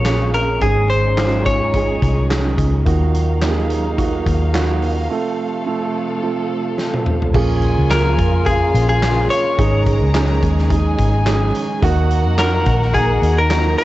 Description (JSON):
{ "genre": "piano-driven pop", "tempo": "107 BPM", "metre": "4/4", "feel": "swing 56% on 16ths", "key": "Bb minor", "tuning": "A4 = 440 Hz", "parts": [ { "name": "direct-recorded clean electric guitar", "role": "melody", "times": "0.0-2.3, 7.9-13.8 s", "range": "Ab4 to Db5", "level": "-19 LUFS", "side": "left 2 dB", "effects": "cassette tape" }, { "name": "warm concert grand piano", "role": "accompaniment", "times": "0.0-13.8 s", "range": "Ab2 to C5", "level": "-21 LUFS", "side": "right 6 dB", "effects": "cassette tape" }, { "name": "dark studio string section", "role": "sustained chords", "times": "0.0-13.8 s", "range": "C3 to F5", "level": "-27 LUFS", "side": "left 1 dB", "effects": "cassette tape" }, { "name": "vintage muted picked electric bass", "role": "bass", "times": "0.0-13.7 s", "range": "Ab1 to F2", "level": "-17 LUFS", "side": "left 1 dB", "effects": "none" }, { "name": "huge arena drum kit", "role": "drums", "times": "0.0-13.8 s", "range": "crash cymbal, handclaps, hi-hat, kick drum, snare drum, toms", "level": "-22 LUFS", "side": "left 1 dB", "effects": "cassette tape" }, { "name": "bright chamber violin section", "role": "second line", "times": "7.3-13.8 s", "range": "F4 to Bb5", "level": "-27 LUFS", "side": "left 2 dB", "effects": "cassette tape" } ], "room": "light reverb, small room ambience", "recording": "home recording on cassette, nothing above 8.0 kHz", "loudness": "-14 LUFS", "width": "side -16 dB against mid", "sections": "0.0-7.3 A section; 7.3-13.8 B section", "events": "break 5.1-7.3; drum fill 6.8-7.3", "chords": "0.0 Bbm7; 0.6 Absus4; 2.9 Ebmadd9; 5.1 F; 7.3 Bbm7; 9.6 Absus4; 11.8 Ebmadd9", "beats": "0.06 | 0.62 1.18 1.74 2.30 | 2.86 3.42 3.98 4.54 | 5.10 5.66 6.22 6.78 | 7.34 7.91 8.46 9.03 | 9.59 10.14 10.71 11.27 | 11.83 12.39 12.95 13.51" }